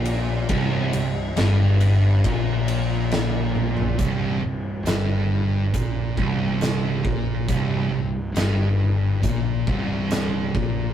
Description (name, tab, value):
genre	stoner and doom metal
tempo	69 BPM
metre	4/4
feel	straight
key	unclear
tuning	A4 = 440 Hz
part	sludgy distorted guitar	riff	0.0-4.0 s	C2 to Bb2	-28 LUFS	left 1 dB	overdrive
part	thick fuzz guitar	riff	0.0-10.9 s	C2 to Bb2	-26 LUFS	left 2 dB	distortion
part	thick fuzz guitar	riff	0.0-10.9 s	C2 to Bb2	-23 LUFS	right 1 dB	distortion
part	fuzz fingered electric bass	bass	0.0-10.9 s	C1 to Bb1	-30 LUFS	equal	overdrive
part	oversized low-tuned drum kit	drums	0.1-10.8 s	hi-hat, kick drum, ride cymbal, snare drum, toms	-27 LUFS	equal	none
room	moderate stone room reverb, RT60 1.0 s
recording	rough rehearsal-room recording, tube saturation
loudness	-20 LUFS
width	side -10 dB against mid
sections	0.0-4.0 A section; 4.0-10.9 B section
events	drum fill 3.6-4.0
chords	0.0 C5